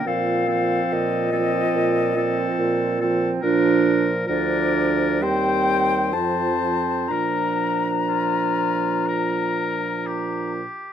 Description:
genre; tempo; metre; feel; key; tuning
classical, slow romantic movement for wind quintet; 60-73 BPM; 4/4; rubato; Bb major; A4 = 440 Hz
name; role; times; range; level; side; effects
silver concert flute; melody; 0.0-10.5 s; D5 to Bb5; -24 LUFS; left 7 dB; none
clear oboe; second line; 0.0-10.9 s; F4 to C5; -28 LUFS; left 4 dB; none
clear clarinet; accompaniment; 0.0-10.7 s; C4 to D4; -26 LUFS; right 10 dB; none
mellow French horn; accompaniment; 0.0-10.6 s; F3 to G3; -26 LUFS; right 1 dB; none
dark bassoon; bass; 0.1-10.6 s; D2 to Bb2; -25 LUFS; right 2 dB; none
room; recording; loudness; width
moderate large studio reverb, RT60 1.3 s; close, detailed microphones; -19 LUFS; side -9 dB against mid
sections
0.0-10.9 A section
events
none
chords
0.1 F7/Bb; 3.4 Bb; 5.2 Cm/Eb; 6.1 F; 7.1 Bb

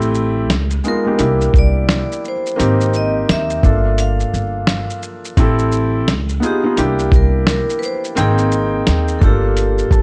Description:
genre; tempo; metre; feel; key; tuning
lo-fi hip hop; 86 BPM; 4/4; swing 61% on 16ths; G dorian; A4 = 440 Hz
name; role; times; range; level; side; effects
felt-muted upright piano; accompaniment; 0.0-10.0 s; G#3 to A5; -22 LUFS; equal; none
upright bass; bass; 0.0-10.0 s; G1 to Eb2; -20 LUFS; equal; none
lo-fi sampler-style drum kit; drums; 0.0-10.0 s; hi-hat, kick drum, shaker, snare drum; -18 LUFS; equal; none
vibraphone with hard mallets; melody; 0.9-10.0 s; G4 to F5; -24 LUFS; equal; none
room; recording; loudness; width
light reverb, small room reverb; cassette tape; -16 LUFS; mono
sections
0.0-10.0 A section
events
none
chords
0.5 C#9; 1.2 C7; 2.6 Abmaj9; 3.6 Gm9; 5.4 Am7; 6.1 C#9; 6.8 C7; 8.2 Abmaj9; 9.2 Gm9

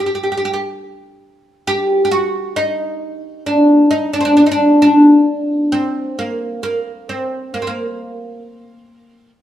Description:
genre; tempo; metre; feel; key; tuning
arabic; 133 BPM (eighths); 10/8; straight; unclear; A4 = 440 Hz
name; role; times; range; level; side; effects
oud; solo; 0.0-9.3 s; Bb3 to G4; -13 LUFS; equal; none
room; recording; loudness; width
light reverb; band playing live in one room, lossy compression artefacts; -13 LUFS; side -12 dB against mid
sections
0.0-1.7 A section; 1.7-9.4 B section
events
none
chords
none

